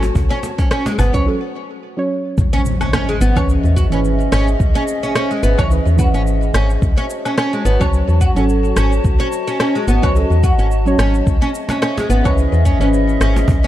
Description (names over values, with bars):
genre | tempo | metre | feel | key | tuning
organic downtempo | 108 BPM | 4/4 | swing 56% on 16ths | C# minor | A4 = 441 Hz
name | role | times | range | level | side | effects
deep mellow chord stab | accompaniment | 0.0-13.7 s | E3 to A5 | -22 LUFS | right 2 dB | chorus, sidechain pumping, ping-pong delay
warbly tape-like pad | sustained chords | 0.0-13.7 s | C#4 to A5 | -24 LUFS | left 1 dB | chorus, built-in reverb, sidechain pumping
woody FM bass | bass | 0.0-13.6 s | G#1 to E2 | -16 LUFS | equal | sidechain pumping
electronic shaker, rim click and woodblock | drums | 0.0-13.7 s | none | -25 LUFS | equal | none
cajon | percussion | 0.0-1.1, 11.7-13.6 s | none | -23 LUFS | right 1 dB | none
electronic kick drum | drums | 0.2-13.6 s | none | -17 LUFS | equal | none
oud | arpeggios | 0.3-13.7 s | G#3 to C#5 | -21 LUFS | equal | ping-pong delay
impact | sound effects | 2.4-4.6 s | none | -22 LUFS | equal | none
room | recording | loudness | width
little or no reverb | dark, warm production | -13 LUFS | side -13 dB against mid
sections
0.0-2.4 A section; 2.4-13.7 B section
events
filter sweep on synth stab 0.0-2.4; break 1.3-2.4; impact 2.4-4.6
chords
0.0 F#m; 2.4 C#m7; 6.8 F#m; 11.3 C#m7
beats
| 0.15 0.71 1.26 1.82 | 2.38 2.93 3.49 4.04 | 4.60 5.15 5.71 6.26 | 6.82 7.38 7.93 8.49 | 9.04 9.60 10.15 10.71 | 11.26 11.82 12.38 12.93 | 13.49